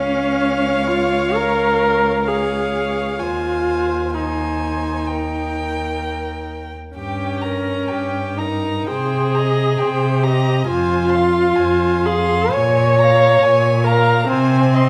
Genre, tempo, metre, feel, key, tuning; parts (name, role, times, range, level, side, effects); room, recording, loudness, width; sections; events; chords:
classical, slow romantic movement for string quartet; 65 BPM; 4/4; uneven beats, rubato; Ab major; A4 = 443 Hz
muted violin; melody; 0.0-14.9 s; F5 to C6; -29 LUFS; equal
muted violin; second line; 0.0-14.9 s; G4 to F5; -28 LUFS; equal
muted viola; accompaniment; 0.0-14.9 s; C4 to Db5; -20 LUFS; equal
muted cello; bass; 0.0-14.9 s; Db2 to C3; -24 LUFS; equal
wet recital hall reverb, RT60 1.4 s; -18 LUFS; mono
0.0-14.9 A section
0.0 Db; 3.2 Ab/Eb; 5.1 Eb; 7.0 Gdim; 8.9 Cm7; 10.7 Fm; 12.5 Bbm7; 14.3 Ab/C